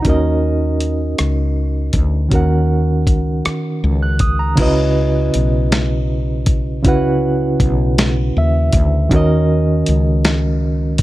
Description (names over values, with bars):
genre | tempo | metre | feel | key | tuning
slow six-eight R&B | 53 BPM (dotted quarters) | 6/8 | straight | C# dorian | A4 = 440 Hz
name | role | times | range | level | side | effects
bright reed electric piano | accompaniment | 0.0-11.0 s | C#3 to F#6 | -17 LUFS | right 1 dB | fast tremolo
woody fretless electric bass | bass | 0.0-11.0 s | B1 to D#2 | -17 LUFS | equal | none
dusty soul sampler-style drum kit | drums | 0.0-11.0 s | crash cymbal, hi-hat, kick drum, rim click, snare drum | -17 LUFS | equal | none
room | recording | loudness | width
little or no reverb | dark, warm production | -13 LUFS | side -16 dB against mid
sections
0.0-4.6 A section; 4.6-11.0 B section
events
reed electric piano fill 8.0-9.1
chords
0.1 D#m7; 4.6 C#m11; 9.1 D#m7